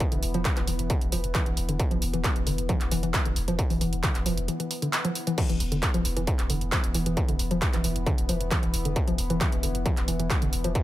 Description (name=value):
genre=driving peak-time techno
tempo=134 BPM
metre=4/4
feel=straight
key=unclear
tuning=A4 = 440 Hz
part: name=analog drone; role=drone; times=0.0-10.8 s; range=E3 to B3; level=-35 LUFS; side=left 2 dB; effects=chorus, sidechain pumping
part: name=electronic kick drum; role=drums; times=0.0-10.8 s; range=none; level=-26 LUFS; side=equal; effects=distortion, overdrive
part: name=techno drum kit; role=drums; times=0.0-10.8 s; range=crash cymbal, handclaps, hi-hat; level=-31 LUFS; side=right 1 dB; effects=overdrive
part: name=woody wave-folded pluck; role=riff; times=0.1-10.7 s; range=D3 to F3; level=-31 LUFS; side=equal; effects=chorus, sidechain pumping, tape echo
part: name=saturated sub bass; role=bass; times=0.1-10.7 s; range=E1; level=-30 LUFS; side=equal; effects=overdrive, sidechain pumping, low-pass filter
room=light reverb, digital ambience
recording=none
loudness=-24 LUFS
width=side -15 dB against mid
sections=0.0-10.8 A section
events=kick drops out 4.5-5.4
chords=0.0 E5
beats=| 0.01 0.45 0.90 1.35 | 1.80 2.24 2.69 3.14 | 3.59 4.04 4.48 4.93 | 5.38 5.83 6.27 6.72 | 7.17 7.62 8.06 8.51 | 8.96 9.41 9.86 10.30 | 10.75